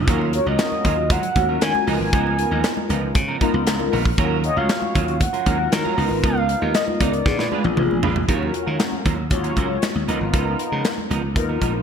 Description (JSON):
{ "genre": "early-eighties boogie funk", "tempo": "117 BPM", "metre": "4/4", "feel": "straight", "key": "Eb minor", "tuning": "A4 = 437 Hz", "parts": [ { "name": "glassy slap bass", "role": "bass", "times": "0.0-11.8 s", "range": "Ab1 to Eb3", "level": "-23 LUFS", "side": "equal", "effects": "none" }, { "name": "mellow synth brass", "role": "accompaniment", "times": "0.1-11.8 s", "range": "Cb4 to Db5", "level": "-26 LUFS", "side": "left 4 dB", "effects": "chorus, phaser" }, { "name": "clean electric guitar", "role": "riff", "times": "0.1-11.8 s", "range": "F3 to Cb5", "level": "-27 LUFS", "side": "right 7 dB", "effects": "ensemble chorus" }, { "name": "modern studio drum kit", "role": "drums", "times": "0.1-11.7 s", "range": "handclaps, hi-hat, kick drum, snare drum, toms", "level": "-23 LUFS", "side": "equal", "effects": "none" }, { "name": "congas", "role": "percussion", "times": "0.1-11.7 s", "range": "none", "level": "-32 LUFS", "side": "left 3 dB", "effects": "none" }, { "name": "mellow horn-like synth lead", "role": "melody", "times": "0.3-8.0 s", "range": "Db5 to Bb5", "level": "-24 LUFS", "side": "equal", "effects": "chorus, phaser" } ], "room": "moderate lush hall reverb, RT60 2.0 s, small room ambience", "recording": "bright 1980s-style digital production", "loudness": "-18 LUFS", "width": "side -7 dB against mid", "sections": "0.0-8.3 A section; 8.3-11.8 B section", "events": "drum fill 7.3-8.3", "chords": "0.1 Ebm9; 1.9 Db13; 4.2 Ebm9; 6.0 Db13; 7.3 Bb7b9; 8.3 Ebm9; 10.1 Db13" }